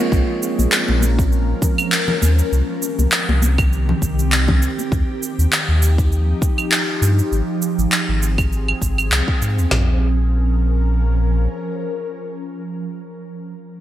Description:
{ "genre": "organic downtempo", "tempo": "100 BPM", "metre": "4/4", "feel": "swing 55% on 16ths", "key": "Bb dorian", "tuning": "A4 = 440 Hz", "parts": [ { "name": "ethereal airy pad", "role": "sustained chords", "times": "0.0-12.9 s", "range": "Eb3 to Bb4", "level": "-24 LUFS", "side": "right 1 dB", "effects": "ensemble chorus, built-in reverb, phaser, sidechain pumping" }, { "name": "warm sub bass", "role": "bass", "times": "0.1-11.5 s", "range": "Ab1 to Ab2", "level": "-17 LUFS", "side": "equal", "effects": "sidechain pumping" }, { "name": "deep house drum kit", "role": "drums", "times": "0.1-9.9 s", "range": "kick drum, snare drum, toms", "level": "-20 LUFS", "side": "equal", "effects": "gated reverb" }, { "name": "electronic cabasa, handclaps and claves", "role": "drums", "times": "0.1-9.7 s", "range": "none", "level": "-21 LUFS", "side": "equal", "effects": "gated reverb" }, { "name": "congas", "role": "percussion", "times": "0.6-4.9 s", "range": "none", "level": "-27 LUFS", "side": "left 3 dB", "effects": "none" } ], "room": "light reverb, digital ambience", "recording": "bright 1980s-style digital production", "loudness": "-15 LUFS", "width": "side -12 dB against mid", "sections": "0.1-9.7 A section; 9.7-12.1 B section", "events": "none", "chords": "0.1 Bbm; 2.5 Cm; 4.9 Ebadd9; 7.3 Ab6; 9.7 Bbm" }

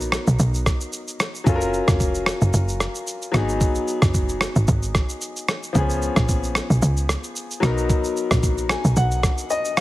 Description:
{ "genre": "afrobeats", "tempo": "112 BPM", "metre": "4/4", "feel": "swing 55% on 16ths", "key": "unclear", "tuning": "A4 = 438 Hz", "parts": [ { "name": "clear grand piano", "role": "accompaniment", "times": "0.0-9.8 s", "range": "F3 to Ab5", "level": "-25 LUFS", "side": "left 2 dB", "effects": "none" }, { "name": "woody log drum bass", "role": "bass", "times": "0.0-9.3 s", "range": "F1 to Db2", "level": "-21 LUFS", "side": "equal", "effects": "none" }, { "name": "dusty soul sampler-style drum kit", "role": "drums", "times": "0.0-9.8 s", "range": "kick drum, rim click, shaker", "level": "-22 LUFS", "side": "equal", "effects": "none" } ], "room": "little or no reverb", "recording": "heavily compressed radio sound, multiband compression", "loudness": "-19 LUFS", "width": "side -16 dB against mid", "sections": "0.0-9.8 A section", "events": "grand piano fill 8.4-9.8", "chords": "0.0 Cbmaj7; 1.5 Gbmaj7; 3.3 Abm7; 5.8 Db7; 7.6 Cbmaj7" }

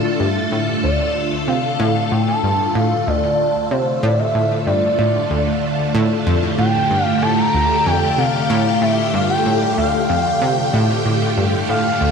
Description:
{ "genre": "ambient, sequencer-driven space music", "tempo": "94 BPM", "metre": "4/4", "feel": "straight", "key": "D minor", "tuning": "A4 = 440 Hz", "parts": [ { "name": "expressive synth lead", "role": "melody", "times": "0.0-12.1 s", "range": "C5 to Bb5", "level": "-20 LUFS", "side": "equal", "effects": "chorus, ping-pong delay" }, { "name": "phased string machine", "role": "sustained chords", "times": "0.0-12.1 s", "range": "D3 to A4", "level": "-19 LUFS", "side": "equal", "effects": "ensemble chorus, phaser" }, { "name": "analog pluck", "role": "riff", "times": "0.0-12.1 s", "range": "D2 to C3", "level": "-20 LUFS", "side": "equal", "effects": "chorus, ping-pong delay" } ], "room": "wet plate reverb, RT60 3.5 s", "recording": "none", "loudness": "-15 LUFS", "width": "side -6 dB against mid", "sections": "0.0-12.1 A section", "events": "none", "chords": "0.0 Dm" }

